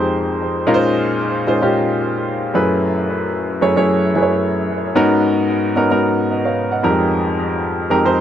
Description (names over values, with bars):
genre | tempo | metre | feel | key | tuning
amapiano | 112 BPM | 4/4 | swing 55% on 16ths | unclear | A4 = 439 Hz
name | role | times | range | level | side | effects
warm baby grand piano | solo | 0.0-8.2 s | F2 to Gb5 | -15 LUFS | equal | dub echo
room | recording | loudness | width
light reverb, small room ambience | echo-heavy mix | -15 LUFS | side -10 dB against mid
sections
0.0-8.2 A section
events
none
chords
0.0 Fm11; 0.7 Bbm11; 2.5 Gbm11; 5.0 Abm11; 6.8 Fm11